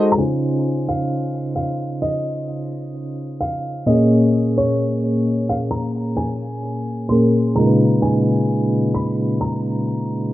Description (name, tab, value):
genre	R&B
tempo	65 BPM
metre	4/4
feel	swing 54% on 16ths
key	Db major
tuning	A4 = 440 Hz
part	warm concert grand piano	melody	0.0-10.3 s	Db5 to C6	-25 LUFS	equal	tape echo
part	soft electric-piano-like synth keys	accompaniment	0.0-10.3 s	Bb2 to Db5	-18 LUFS	equal	chorus, tremolo
room	light reverb, studio reverb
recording	worn, warbling old tape, cassette tape, warbly pitch drift, low-pass filter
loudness	-17 LUFS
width	side -15 dB against mid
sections	0.2-10.3 A section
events	filter sweep 0.2-10.3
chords	0.2 Dbmaj9; 3.9 Bbm7; 7.6 Db13